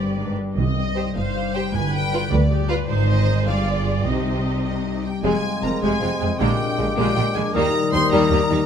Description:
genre	classical, dramatic, fast romantic movement for symphony orchestra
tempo	104 BPM (dotted quarters)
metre	6/8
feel	straight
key	C minor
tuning	A4 = 438 Hz
part	warm symphonic violin section	second line	0.0-8.6 s	G3 to C5	-28 LUFS	equal	none
part	rich symphonic viola section	accompaniment	0.0-8.6 s	C3 to Eb5	-27 LUFS	right 1 dB	none
part	concert harp	arpeggios	0.0-8.7 s	F2 to Eb5	-26 LUFS	left 9 dB	none
part	rich symphonic cello section	bass	0.0-8.6 s	D2 to C3	-27 LUFS	right 2 dB	none
part	rich symphonic double bass section	bass	0.0-8.6 s	F1 to Eb2	-25 LUFS	right 3 dB	none
part	timpani	percussion	0.6-4.6 s	G2 to C3	-28 LUFS	right 2 dB	none
part	warm symphonic violin section	melody	0.8-8.7 s	C5 to C6	-28 LUFS	left 2 dB	none
part	mellow clarinet	second line	4.7-8.7 s	Eb4 to C5	-30 LUFS	equal	none
part	mellow hollow concert flute	second line	5.2-8.7 s	C6 to Eb6	-29 LUFS	left 1 dB	none
part	clear bassoon	accompaniment	5.2-8.7 s	G3 to Ab3	-29 LUFS	right 2 dB	none
part	mellow French horn section	sustained chords	5.2-8.7 s	G3 to Eb4	-27 LUFS	left 3 dB	none
room	moderate recital hall reverb, RT60 1.7 s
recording	close, detailed microphones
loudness	-18 LUFS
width	side -8 dB against mid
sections	0.0-5.2 A section; 5.2-8.7 B section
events	none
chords	0.0 G; 0.6 Cm; 1.7 G7b9; 2.9 Ab; 3.5 G7b9; 4.1 Cm; 5.2 Fm; 6.4 Bb7; 7.6 Eb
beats	| 0.58 1.16 | 1.74 2.32 | 2.90 3.47 | 4.06 4.65 | 5.25 5.83 | 6.41 6.98 | 7.55 8.12

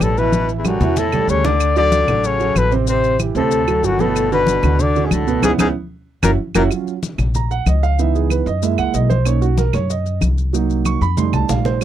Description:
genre	Afro-Cuban jazz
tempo	188 BPM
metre	4/4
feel	straight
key	unclear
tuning	A4 = 440 Hz
part	dark trumpet	melody	0.0-6.6 s	E4 to D5	-18 LUFS	left 4 dB	none
part	warm baritone saxophone	second line	0.0-6.6 s	E2 to D3	-24 LUFS	left 4 dB	none
part	warm grand piano	accompaniment	0.0-11.8 s	B2 to Db6	-20 LUFS	right 10 dB	none
part	upright bass	bass	0.0-11.8 s	F#1 to Gb2	-19 LUFS	left 1 dB	none
part	claves	percussion	0.0-11.8 s	none	-27 LUFS	right 15 dB	none
part	congas	percussion	0.0-11.8 s	none	-23 LUFS	left 2 dB	none
part	maracas	percussion	0.0-11.8 s	none	-32 LUFS	left 18 dB	none
room	light reverb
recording	dry, close 1970s-style studio recording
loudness	-15 LUFS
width	side -11 dB against mid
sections	0.0-6.7 A section; 6.7-11.8 B section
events	drum fill 0.3-1.6, 10.9-11.8; band accent 5.4-6.7; grand piano solo 6.7-11.8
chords	0.3 A5; 1.6 Dmaj7; 2.9 Am7; 3.5 D6; 4.2 Gmaj9; 5.4 C#m7; 6.1 F#7; 6.7 Bbm; 8.0 Dbm7; 8.6 Gb7; 9.3 Bmaj7; 10.5 Cm7b5; 11.2 F7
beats	0.01 | 0.33 0.65 0.97 1.29 | 1.60 1.92 2.24 2.56 | 2.88 3.20 3.52 3.84 | 4.16 4.47 4.79 5.11 | 5.43 5.75 6.07 6.39 | 6.71 7.03 7.35 7.67 | 7.99 8.30 8.62 8.94 | 9.26 9.58 9.90 10.22 | 10.54 10.86 11.18 11.50 | 11.82

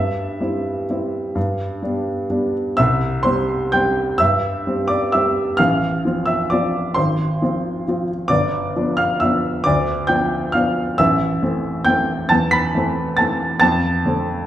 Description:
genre	classical, piano waltz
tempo	122-144 BPM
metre	3/4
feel	rubato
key	C major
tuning	A4 = 440 Hz
part	dark baby grand piano	solo	0.0-14.5 s	G1 to B6	-17 LUFS	equal	none
room	wet recital hall reverb, RT60 1.5 s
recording	recorded in a church or concert hall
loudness	-17 LUFS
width	side -12 dB against mid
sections	0.0-2.8 A section; 2.8-14.5 B section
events	none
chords	0.0 C/G; 1.4 G; 2.8 C; 5.6 F/A; 7.0 Fm/Ab; 8.3 G7; 11.0 Am; 13.6 Dm7/F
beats	0.40 0.89 | 1.36 1.83 2.30 | 2.78 3.24 3.73 | 4.19 4.65 5.11 | 5.58 6.04 6.51 | 6.97 7.41 7.86 | 8.30 8.74 9.20 | 9.64 10.08 10.54 | 10.98 11.41 11.85 | 12.29 12.73 13.18 | 13.61 14.04

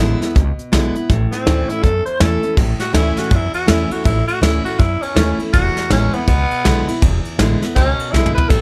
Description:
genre	rockabilly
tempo	162 BPM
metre	4/4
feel	swing 61% on 8ths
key	A major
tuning	A4 = 440 Hz
part	picked steel-string acoustic guitar	accompaniment	0.0-8.6 s	E2 to E4	-23 LUFS	equal	none
part	upright bass	bass	0.0-8.6 s	E1 to F#2	-20 LUFS	equal	none
part	soft brush drum kit	drums	0.2-8.6 s	crash cymbal, hi-hat, kick drum, ride cymbal, snare drum, splash cymbal, toms	-20 LUFS	equal	none
part	raspy tenor saxophone	melody	1.3-8.6 s	B3 to C5	-22 LUFS	equal	none
room	light reverb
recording	none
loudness	-16 LUFS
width	mono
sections	0.0-2.6 A section; 2.6-8.6 B section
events	tenor saxophone solo 2.6-8.6; drum fill 8.1-8.5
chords	0.0 E7; 1.1 A; 5.5 E7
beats	0.36 0.73 | 1.10 1.47 1.84 2.21 | 2.58 2.95 3.32 3.69 | 4.06 4.43 4.80 5.17 | 5.54 5.91 6.28 6.65 | 7.02 7.39 7.76 8.13 | 8.50

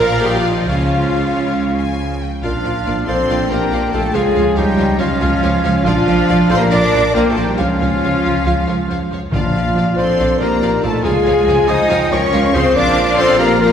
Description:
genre	cinematic, heroic adventure film score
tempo	139 BPM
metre	4/4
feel	straight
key	unclear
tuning	A4 = 440 Hz
part	warm symphonic violin section	melody	0.0-13.7 s	Eb5 to Eb6	-26 LUFS	left 2 dB	none
part	rich symphonic violin section	second line	0.0-13.7 s	Db5 to Ab5	-27 LUFS	left 2 dB	none
part	silver concert flute	second line	0.0-13.7 s	Db5 to Ab5	-25 LUFS	left 2 dB	none
part	warm clarinet	second line	0.0-13.7 s	Db4 to C5	-24 LUFS	left 2 dB	none
part	warm oboe	second line	0.0-13.7 s	C4 to Eb5	-26 LUFS	equal	none
part	rich studio viola section	accompaniment	0.0-13.7 s	F3 to Bb4	-24 LUFS	right 2 dB	none
part	clear trombone section	sustained chords	0.0-13.7 s	F3 to F4	-25 LUFS	right 2 dB	none
part	dark French horn section	sustained chords	0.0-13.7 s	Eb3 to Eb5	-19 LUFS	left 2 dB	none
part	clear symphonic cello section	bass	0.0-13.7 s	Bb2 to Eb4	-20 LUFS	right 1 dB	none
part	rich symphonic double bass section	bass	0.0-13.7 s	Bb1 to Db2	-20 LUFS	right 1 dB	none
part	timpani	percussion	9.3-9.9 s	Bb2	-22 LUFS	left 1 dB	none
room	wet scoring stage reverb, RT60 1.7 s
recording	heard from further back in the room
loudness	-13 LUFS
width	side -8 dB against mid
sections	0.0-2.4 A section; 2.4-13.7 B section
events	none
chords	0.0 Bb; 0.7 Db; 2.4 Bb; 4.2 Db; 5.9 Bb; 7.6 Db; 9.3 Bb; 11.1 Db; 12.8 Bb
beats	0.24 | 0.67 1.11 1.55 1.99 | 2.43 2.86 3.29 3.72 | 4.15 4.58 5.01 5.44 | 5.87 6.29 6.72 7.15 | 7.59 8.02 8.46 8.90 | 9.33 9.76 10.19 10.62 | 11.05 11.48 11.90 12.33 | 12.76 13.19 13.62

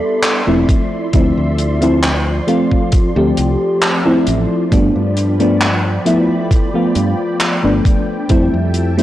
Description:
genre	vaporwave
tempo	67 BPM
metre	4/4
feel	straight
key	D dorian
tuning	A4 = 440 Hz
part	mellow FM electric piano	accompaniment	0.0-9.0 s	F3 to A4	-15 LUFS	equal	analog chorus, tape echo
part	soft string machine	sustained chords	0.0-9.0 s	F3 to C6	-23 LUFS	equal	ensemble chorus, vintage 12-bit sampler grit
part	damped 70s drum kit	drums	0.2-9.0 s	handclaps, hi-hat	-19 LUFS	equal	vintage 12-bit sampler grit, studio reverb
part	fingered electric bass	bass	0.5-9.0 s	E1 to G2	-17 LUFS	equal	tube saturation
part	electronic kick drum	drums	0.7-8.5 s	none	-14 LUFS	equal	vintage 12-bit sampler grit, studio reverb
room	light reverb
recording	dry, gritty hardware recording, transformer saturation, cassette tape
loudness	-12 LUFS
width	side -14 dB against mid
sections	0.0-9.0 A section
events	none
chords	0.0 Cmaj9; 0.7 Dm9; 4.7 G7; 8.3 Fmaj9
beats	0.24 | 1.14 2.03 2.93 3.82 | 4.72 5.61 6.51 7.41 | 8.30

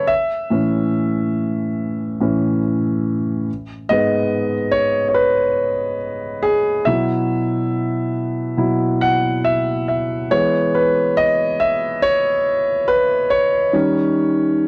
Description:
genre	pop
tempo	70 BPM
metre	4/4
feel	straight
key	E major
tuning	A4 = 442 Hz
part	warm concert grand piano	solo	0.0-14.7 s	G#2 to F#5	-18 LUFS	equal	none
room	little or no reverb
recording	dry, close 1970s-style studio recording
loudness	-19 LUFS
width	mono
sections	0.0-10.3 A section; 10.3-14.7 B section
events	grand piano solo 0.0-10.3, 10.3-14.7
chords	0.1 A; 3.5 G#madd11; 6.9 Bsus4; 10.3 E; 13.7 D#7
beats	| 0.09 0.94 1.78 2.63 | 3.48 4.32 5.17 6.02 | 6.87 7.72 8.57 9.44 | 10.31 11.17 12.03 12.88 | 13.74 14.59

